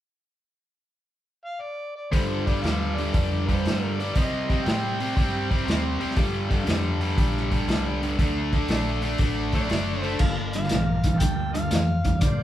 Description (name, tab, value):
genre	blues rock power trio and southern rock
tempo	119 BPM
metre	4/4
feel	swing 68% on 8ths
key	G minor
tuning	A4 = 440 Hz
part	overdriven harmonica	melody	1.5-5.7, 9.5-12.4 s	C5 to G5	-32 LUFS	left 1 dB	none
part	cranked stack guitar	riff	2.1-12.4 s	G2 to D4	-26 LUFS	equal	overdrive
part	vintage muted fingered electric bass	bass	2.1-12.4 s	F#1 to C3	-29 LUFS	equal	none
part	vintage drum kit	drums	2.1-12.4 s	crash cymbal, hi-hat, kick drum, snare drum	-25 LUFS	equal	none
part	overdriven tonewheel organ	sustained chords	10.2-12.4 s	Bb3 to C5	-37 LUFS	right 1 dB	chorus vibrato, slow rotary speaker
room	moderate large studio reverb, RT60 0.8 s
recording	band playing live in one room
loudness	-22 LUFS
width	side -12 dB against mid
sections	0.1-2.1 A section; 2.1-10.2 B section; 10.2-12.4 C section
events	none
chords	0.1 N.C.; 2.1 G5; 4.2 Cm; 6.2 Gm7; 8.2 D; 10.2 Gm9